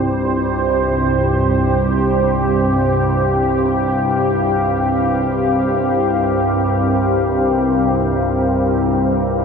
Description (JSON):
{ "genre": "dark ambient drone", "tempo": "free time", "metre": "none", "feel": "none", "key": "unclear", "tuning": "A4 = 441 Hz", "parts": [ { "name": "deep dark ambient pad", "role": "sustained chords", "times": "0.0-9.4 s", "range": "C4 to F5", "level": "-16 LUFS", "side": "equal", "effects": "chorus, built-in reverb" }, { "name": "organ-like drone", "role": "drone", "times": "0.0-9.4 s", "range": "C2 to G2", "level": "-18 LUFS", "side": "equal", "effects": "ensemble chorus, built-in reverb" }, { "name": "bronze singing bowl", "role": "texture", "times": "0.0-9.4 s", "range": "none", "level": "barely audible", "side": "none", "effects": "none" } ], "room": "wet huge ambient reverb, RT60 8.5 s", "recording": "dreamy mix soaked in reverb", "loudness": "-14 LUFS", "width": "side -6 dB against mid", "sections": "0.0-9.4 A section", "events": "none", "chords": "0.0 C7sus4" }